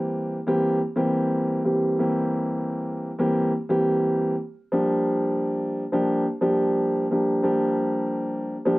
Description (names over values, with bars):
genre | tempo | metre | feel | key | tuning
hip hop | 88 BPM | 4/4 | swing 54% on 16ths | G dorian | A4 = 439 Hz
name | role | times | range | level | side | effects
dark baby grand piano | solo | 0.0-8.8 s | E3 to G4 | -21 LUFS | equal | high-pass filter, low-pass filter
room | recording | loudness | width
moderate small room reverb, RT60 0.5 s | worn, warbling old tape, cassette tape, warbly pitch drift | -21 LUFS | side -20 dB against mid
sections
0.0-4.7 A section; 4.7-8.8 A section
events
none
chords
0.0 C7; 4.7 Gm7